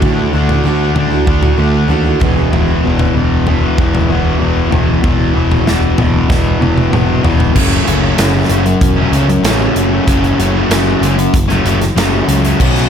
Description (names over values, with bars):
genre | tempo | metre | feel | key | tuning
quiet-loud alternative rock | 95 BPM | 4/4 | straight | F# minor | A4 = 440 Hz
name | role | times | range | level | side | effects
picked steel-string acoustic guitar | arpeggios | 0.0-2.5 s | E2 to G#4 | -20 LUFS | right 10 dB | digital delay
fuzz guitar | riff | 0.0-12.9 s | E2 to D4 | -14 LUFS | left 1 dB | distortion
fuzz picked electric bass | bass | 0.0-12.8 s | E1 to D#2 | -16 LUFS | equal | overdrive
big rock drum kit | drums | 0.0-12.9 s | crash cymbal, hi-hat, kick drum, snare drum, toms | -15 LUFS | equal | none
room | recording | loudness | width
light reverb | none | -10 LUFS | side -8 dB against mid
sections
0.0-7.6 A section; 7.6-12.9 B section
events
drum fill 6.3-7.6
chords
0.0 Dadd9; 2.2 E5; 7.6 F#m